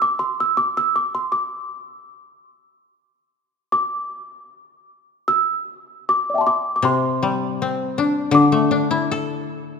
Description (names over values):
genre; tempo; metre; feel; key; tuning
japanese traditional, Japanese chamber music; 72-81 BPM; 4/4; rubato; D suspended pentatonic; A4 = 438 Hz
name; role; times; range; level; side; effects
small celesta; melody; 0.0-9.4 s; D5 to E6; -20 LUFS; right 1 dB; none
koto; accompaniment; 6.8-9.8 s; C3 to A4; -18 LUFS; left 4 dB; none
room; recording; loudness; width
moderate concert hall reverb, RT60 2.4 s; minimal, uncompressed stereo recording; -18 LUFS; side -5 dB against mid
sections
0.0-3.7 A section; 3.7-9.8 B section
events
none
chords
none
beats
| 0.54 1.29 2.07 2.90 | 3.72 4.52 5.30 6.08 | 6.85 7.60 8.35 9.10